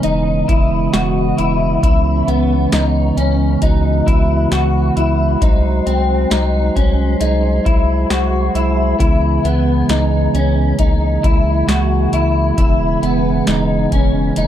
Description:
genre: dream pop.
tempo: 67 BPM.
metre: 4/4.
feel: straight.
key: C# dorian.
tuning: A4 = 441 Hz.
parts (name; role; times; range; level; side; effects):
mellow tonewheel organ; sustained chords; 0.0-14.5 s; C#3 to D#5; -18 LUFS; right 4 dB; slow rotary speaker.
electric guitar at the edge of break-up; arpeggios; 0.0-14.5 s; B3 to F#4; -18 LUFS; left 3 dB; ensemble chorus, tape echo.
saturated sub bass; bass; 0.0-14.5 s; E1 to C#2; -18 LUFS; equal; none.
booming analog drum machine; drums; 0.0-14.5 s; hi-hat, kick drum, snare drum; -16 LUFS; equal; overdrive.
room: light reverb, digital ambience.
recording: dark, warm production.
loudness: -13 LUFS.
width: side -11 dB against mid.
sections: 0.0-14.5 A section.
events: none.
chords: 0.0 E6; 1.8 C#m7; 5.4 G#7/B#; 9.0 C#m7; 12.6 E6.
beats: 0.04 0.94 | 1.83 2.73 3.62 4.52 | 5.42 6.31 7.21 8.10 | 9.00 9.89 10.79 11.69 | 12.58 13.48 14.37.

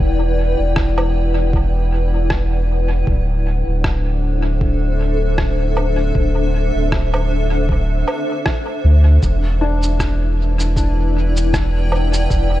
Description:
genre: ambient dub.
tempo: 78 BPM.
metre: 4/4.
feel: swing 56% on 16ths.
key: E minor.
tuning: A4 = 439 Hz.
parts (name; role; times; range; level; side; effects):
granular cloud pad; sustained chords; 0.0-12.6 s; D4 to G5; -22 LUFS; left 1 dB; built-in reverb.
warm sub bass; bass; 0.0-12.6 s; D1 to D2; -16 LUFS; equal; none.
electronic kick drum; drums; 0.0-12.5 s; none; -20 LUFS; equal; studio reverb.
electronic rim click, woodblock and cabasa; drums; 0.8-12.5 s; none; -26 LUFS; right 1 dB; studio reverb, dub echo.
felt-muted upright piano; arpeggios; 9.6-12.6 s; D4; -27 LUFS; left 3 dB; dub echo.
room: little or no reverb.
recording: nothing above 10.7 kHz.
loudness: -15 LUFS.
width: side -14 dB against mid.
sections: 0.0-12.6 A section.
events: none.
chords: 0.0 Em7; 3.1 D7; 9.2 Em7.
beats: | 0.00 0.77 1.54 2.31 | 3.07 3.84 4.61 5.38 | 6.15 6.92 7.69 8.46 | 9.23 10.00 10.77 11.54 | 12.30.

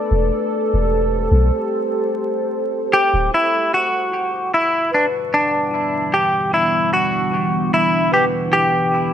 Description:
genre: trip hop.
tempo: 75 BPM.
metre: 4/4.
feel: swing 56% on 16ths.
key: E minor.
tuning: A4 = 441 Hz.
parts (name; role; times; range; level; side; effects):
deep dark ambient pad; sustained chords; 0.0-9.1 s; E3 to C5; -22 LUFS; equal; chorus, built-in reverb, vintage 12-bit sampler grit.
soft 808-style bass; bass; 0.1-3.3 s; D1 to B1; -17 LUFS; equal; none.
semi-hollow electric guitar; melody; 2.9-9.1 s; D4 to G4; -16 LUFS; equal; tape echo.
music box; arpeggios; 3.3-9.1 s; E4 to B4; -27 LUFS; left 2 dB; low-pass filter, ping-pong delay.
room: moderate lush hall reverb, RT60 2.5 s.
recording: rough home demo mix, vinyl crackle.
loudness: -16 LUFS.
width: side -9 dB against mid.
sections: 0.0-3.3 A section; 3.3-9.1 B section.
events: filter sweep on ambient pad 3.3-9.1; filter sweep on music box 3.3-9.1.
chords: 0.1 Am7/E; 3.3 Em7.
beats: | 0.11 0.91 1.71 2.51 | 3.31 4.11 4.91 5.71 | 6.51 7.31 8.11 8.91.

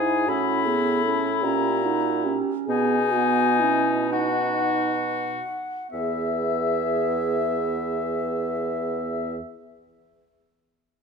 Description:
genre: classical, slow romantic movement for wind quintet.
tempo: 31-54 BPM (dotted quarters).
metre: 6/8.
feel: rubato.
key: E major.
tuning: A4 = 440 Hz.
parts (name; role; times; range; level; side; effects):
mellow silver concert flute; melody; 0.0-9.4 s; E5 to B5; -27 LUFS; left 7 dB; none.
warm oboe; second line; 0.0-9.4 s; D#4 to E5; -29 LUFS; left 5 dB; none.
dark clarinet; accompaniment; 0.0-9.4 s; B3 to G#4; -28 LUFS; right 9 dB; none.
mellow French horn; accompaniment; 0.0-9.4 s; B3 to A4; -29 LUFS; equal; none.
mellow bassoon; bass; 0.0-9.4 s; E2 to B2; -29 LUFS; right 3 dB; none.
room: wet recital hall reverb, RT60 1.8 s.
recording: none.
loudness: -21 LUFS.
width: side -5 dB against mid.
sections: 0.0-5.9 A section; 5.9-9.5 B section.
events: slowing down 0.0-5.9.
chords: 0.3 Amaj13; 1.4 A#dim; 2.7 B; 5.9 E.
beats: | 0.28 1.44 | 2.69 4.13 | 5.93 7.68.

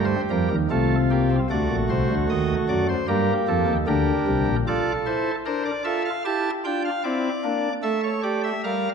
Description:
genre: classical, baroque-style 4-part fugue for pipe organ.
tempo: 76 BPM.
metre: 4/4.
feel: straight.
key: unclear.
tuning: A4 = 440 Hz.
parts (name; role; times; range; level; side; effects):
pipe organ, cornet; solo; 0.0-8.9 s; Bb1 to A5; -21 LUFS; equal; none.
room: wet scoring stage reverb, RT60 1.6 s.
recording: dark, warm production.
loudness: -21 LUFS.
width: side -6 dB against mid.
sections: 0.0-8.9 A section.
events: none.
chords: 0.0 Am7b5; 1.5 D7; 3.1 Gm; 4.7 Dm; 6.3 Em7b5; 7.8 A7.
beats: 0.70 | 1.50 2.29 3.09 3.88 | 4.67 5.46 6.25 7.05 | 7.84 8.64.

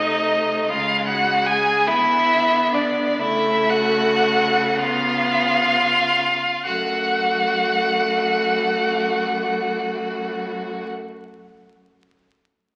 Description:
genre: classical, slow romantic movement for string quartet.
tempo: 30-52 BPM (dotted quarters).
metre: 6/8.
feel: rubato.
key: F# minor.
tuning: A4 = 440 Hz.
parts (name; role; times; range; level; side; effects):
rich violin; melody; 0.0-10.9 s; D5 to G#5; -23 LUFS; equal; none.
clear violin; second line; 0.0-10.9 s; D4 to G#4; -26 LUFS; equal; none.
clear viola; accompaniment; 0.0-10.9 s; G#3 to B3; -27 LUFS; equal; none.
clear cello; bass; 0.0-10.9 s; F#2 to D3; -34 LUFS; equal; none.
room: wet scoring stage reverb, RT60 1.9 s.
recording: very old 78 rpm record, vinyl crackle.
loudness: -20 LUFS.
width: mono.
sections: 0.0-6.7 A section; 6.7-10.4 B section.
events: slowing down 0.0-6.7.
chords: 0.0 F7/C (rootless); 0.7 C#5; 1.9 Bm/D; 3.2 F#m/C#; 4.8 C#7; 6.7 F#m.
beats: | 0.69 1.88 | 3.22 4.79 | 6.66 8.54.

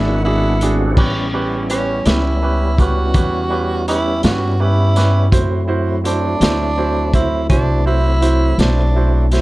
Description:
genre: slow blues.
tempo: 55 BPM (dotted quarters).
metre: 12/8.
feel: straight.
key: A mixolydian.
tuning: A4 = 440 Hz.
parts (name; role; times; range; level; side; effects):
growling tenor saxophone; second line; 0.0-9.3 s; C#4 to F#4; -21 LUFS; right 2 dB; none.
bright upright piano; accompaniment; 0.0-9.4 s; C#4 to C5; -22 LUFS; right 4 dB; none.
tonewheel organ; sustained chords; 0.0-9.4 s; F#3 to F#5; -24 LUFS; left 1 dB; slow rotary speaker, overdrive, chorus vibrato.
upright bass; bass; 0.0-9.4 s; G#1 to G2; -17 LUFS; equal; none.
crunchy breakbeat drum kit; drums; 0.6-9.4 s; crash cymbal, hi-hat, kick drum, snare drum; -18 LUFS; equal; none.
room: light reverb.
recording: dark, warm production.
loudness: -13 LUFS.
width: side -19 dB against mid.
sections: 1.0-9.4 A section.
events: tenor saxophone solo 1.0-9.4.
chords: 0.0 E7; 1.0 A7; 5.3 D7.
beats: | 0.98 2.06 3.15 4.24 | 5.33 6.42 7.51 8.60.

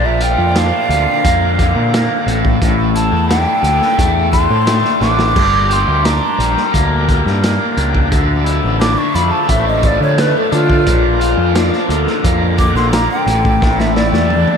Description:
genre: psychedelic rock.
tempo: 87 BPM.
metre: 4/4.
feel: straight.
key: unclear.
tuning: A4 = 440 Hz.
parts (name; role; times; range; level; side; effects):
mellow hollow jazz flute; melody; 0.0-14.6 s; F4 to D6; -17 LUFS; equal; ping-pong delay.
bright tonewheel organ; sustained chords; 0.0-14.6 s; F3 to E5; -26 LUFS; right 5 dB; slow rotary speaker, overdrive.
raw garage guitar; riff; 0.0-14.6 s; G2 to G4; -18 LUFS; left 3 dB; overdrive, phaser.
growling picked electric bass; bass; 0.0-14.4 s; G1 to D3; -17 LUFS; equal; overdrive.
crunchy breakbeat drum kit; drums; 0.2-14.6 s; crash cymbal, hi-hat, kick drum, snare drum, toms; -18 LUFS; equal; none.
room: moderate cathedral reverb, RT60 6.7 s.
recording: dreamy mix soaked in reverb.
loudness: -11 LUFS.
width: side -6 dB against mid.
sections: 0.0-14.6 A section.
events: flute solo 0.0-14.6; drum fill 5.0-5.4, 13.6-14.6.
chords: 0.0 Bb; 2.3 Asus4; 5.4 Gm; 8.1 Dmadd9; 10.9 Bb; 13.3 Asus4.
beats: 0.56 1.25 1.93 | 2.62 3.30 3.99 4.68 | 5.36 6.05 6.74 7.42 | 8.11 8.80 9.49 10.18 | 10.86 11.55 12.24 12.93 | 13.62 14.30.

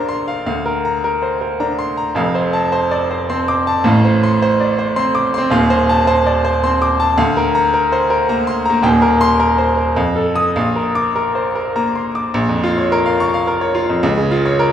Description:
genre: classical, virtuoso piano study.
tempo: 107 BPM.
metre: 3/4.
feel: rubato.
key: Bb major.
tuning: A4 = 439 Hz.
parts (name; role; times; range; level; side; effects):
clear baby grand piano; solo; 0.0-14.7 s; Eb1 to Eb6; -13 LUFS; equal; none.
room: wet recital hall reverb, RT60 1.4 s.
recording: recorded in a church or concert hall.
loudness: -13 LUFS.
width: side -9 dB against mid.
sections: 0.0-12.3 A section; 12.3-14.7 B section.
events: none.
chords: 0.5 Bb/D; 2.2 F; 3.9 F/A; 5.5 F7/Eb; 7.2 Bb/D; 8.8 Cm7/Eb; 10.0 F7; 10.6 Bb; 12.3 Bbm; 14.0 Bbm/Db.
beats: | 0.47 1.04 1.60 | 2.16 2.72 3.29 | 3.85 4.41 4.96 | 5.52 6.08 6.64 | 7.18 7.74 8.29 | 8.84 9.39 9.96 | 10.55 11.15 11.75 | 12.34 12.91 13.47 | 14.03 14.59.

